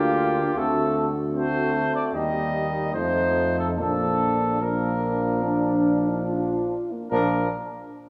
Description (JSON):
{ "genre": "classical, brass quintet", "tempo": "71-77 BPM", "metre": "4/4", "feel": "rubato", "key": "Bb major", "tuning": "A4 = 440 Hz", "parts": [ { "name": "clear trumpet", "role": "melody", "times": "0.0-7.5 s", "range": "G4 to Eb5", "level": "-29 LUFS", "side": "equal", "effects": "none" }, { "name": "warm flugelhorn", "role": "second line", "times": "0.0-7.5 s", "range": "D4 to F#4", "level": "-32 LUFS", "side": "equal", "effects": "none" }, { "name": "brilliant trombone", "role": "accompaniment", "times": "0.0-7.5 s", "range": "F3 to Bb3", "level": "-32 LUFS", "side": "equal", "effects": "none" }, { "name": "mellow French horn", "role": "accompaniment", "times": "0.0-7.5 s", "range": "A3 to F4", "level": "-31 LUFS", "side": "equal", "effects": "none" }, { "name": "mellow bass trombone", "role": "bass", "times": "0.0-7.5 s", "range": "Bb1 to F2", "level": "-31 LUFS", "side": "equal", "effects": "none" } ], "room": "wet concert hall reverb, RT60 2.0 s", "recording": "none", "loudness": "-24 LUFS", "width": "mono", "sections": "0.0-7.1 A section", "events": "none", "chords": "0.0 Bb/D; 0.6 D7; 2.1 Eb; 2.9 F7; 3.8 Bb" }